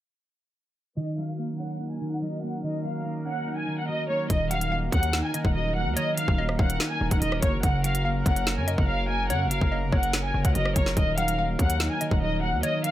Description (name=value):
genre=hip hop, drill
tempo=144 BPM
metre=4/4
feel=half-time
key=Eb minor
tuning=A4 = 440 Hz
part: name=warm studio violin section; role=melody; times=1.0-12.9 s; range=Db5 to Ab5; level=-30 LUFS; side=equal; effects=low-pass filter
part: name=mellow electric guitar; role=accompaniment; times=1.0-12.9 s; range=Db3 to Db5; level=-30 LUFS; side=right 1 dB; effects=ensemble chorus, low-pass filter
part: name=mellow brass ensemble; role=sustained chords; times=1.0-12.9 s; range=Gb3 to Db5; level=-37 LUFS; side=equal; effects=none
part: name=distorted 808-style bass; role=bass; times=4.3-12.6 s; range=Eb1 to Gb2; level=-28 LUFS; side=equal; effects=distortion
part: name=drill drum kit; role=drums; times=4.3-12.9 s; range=hi-hat, kick drum, rim click, snare drum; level=-26 LUFS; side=equal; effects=none
part: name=hollow square pluck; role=second line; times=4.5-12.9 s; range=Db5 to Gb5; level=-36 LUFS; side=left 1 dB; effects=chorus, tape echo
room=little or no reverb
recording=low-pass filter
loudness=-23 LUFS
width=side -13 dB against mid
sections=1.0-4.3 A section; 4.3-12.9 B section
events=filter sweep 1.0-4.3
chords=1.0 Ebm7; 7.6 Gb; 11.0 Ebm7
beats=| 0.97 1.38 1.80 2.22 | 2.63 3.05 3.47 3.88 | 4.30 4.72 5.13 5.55 | 5.97 6.38 6.80 7.22 | 7.63 8.05 8.47 8.88 | 9.30 9.72 10.13 10.55 | 10.97 11.38 11.80 12.22 | 12.63